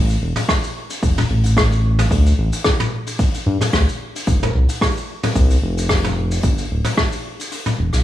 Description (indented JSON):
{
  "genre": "sunset chillout",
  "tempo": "111 BPM",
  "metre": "4/4",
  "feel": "swing 54% on 16ths",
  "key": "A minor",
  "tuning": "A4 = 437 Hz",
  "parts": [
    { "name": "round analog bass", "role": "bass", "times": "0.0-8.0 s", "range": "D1 to G2", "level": "-16 LUFS", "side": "equal", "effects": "none" },
    { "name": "vintage brush drum kit", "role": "drums", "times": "0.1-8.0 s", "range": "hi-hat, rim click, shaker, toms", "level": "-21 LUFS", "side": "left 1 dB", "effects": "none" },
    { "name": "electronic kick drum", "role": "drums", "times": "0.5-7.1 s", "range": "none", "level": "-19 LUFS", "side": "equal", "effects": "overdrive" }
  ],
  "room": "little or no reverb",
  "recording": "small room ambience",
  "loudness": "-16 LUFS",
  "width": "side -13 dB against mid",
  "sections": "0.0-8.0 A section",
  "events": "kick drops out 7.5-8.0",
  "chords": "none",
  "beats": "0.49 1.03 1.57 | 2.11 2.65 3.19 3.73 | 4.27 4.82 5.36 5.90 | 6.44 6.98 7.52"
}